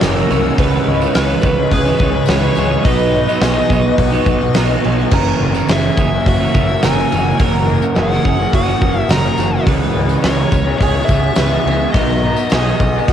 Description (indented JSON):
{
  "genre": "rock, shoegaze and dream pop",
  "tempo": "106 BPM",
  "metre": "4/4",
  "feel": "straight",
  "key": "unclear",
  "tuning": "A4 = 440 Hz",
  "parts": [
    { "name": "icy glass pad", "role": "sustained chords", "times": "0.0-13.1 s", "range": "B3 to E6", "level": "-24 LUFS", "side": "left 2 dB", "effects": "chorus, built-in reverb" },
    { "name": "picked twelve-string acoustic guitar", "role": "arpeggios", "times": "0.0-13.1 s", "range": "F#4 to B4", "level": "-23 LUFS", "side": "right 8 dB", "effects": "analog chorus, tape echo" },
    { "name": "crunchy overdriven guitar", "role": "riff", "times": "0.0-13.1 s", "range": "F#2 to D#4", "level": "-19 LUFS", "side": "right 7 dB", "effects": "reverse reverb" },
    { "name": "raw garage guitar", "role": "riff", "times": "0.0-13.1 s", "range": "F#2 to D#4", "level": "-21 LUFS", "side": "left 11 dB", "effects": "overdrive, lush chorus" },
    { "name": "growling picked electric bass", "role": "bass", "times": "0.0-13.1 s", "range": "F#1 to C#2", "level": "-19 LUFS", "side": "equal", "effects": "overdrive, tube saturation" },
    { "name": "huge arena drum kit", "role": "drums", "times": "0.0-13.1 s", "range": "crash cymbal, hi-hat, kick drum, snare drum", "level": "-18 LUFS", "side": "equal", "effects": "cassette tape" },
    { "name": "tambourine", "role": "percussion", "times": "0.0-13.1 s", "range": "none", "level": "-37 LUFS", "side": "left 12 dB", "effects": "none" },
    { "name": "nasal lead guitar with a parked wah", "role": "melody", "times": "1.2-13.1 s", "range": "B4 to A#5", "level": "-22 LUFS", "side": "left 1 dB", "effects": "overdrive, tape echo" }
  ],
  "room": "small room ambience",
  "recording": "home recording on cassette",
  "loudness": "-12 LUFS",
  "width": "side -9 dB against mid",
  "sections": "0.0-13.1 A section",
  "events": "none",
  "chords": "0.0 F#7; 0.6 C#m7; 2.9 Badd9; 5.1 F#7; 9.7 C#m7; 12.0 B"
}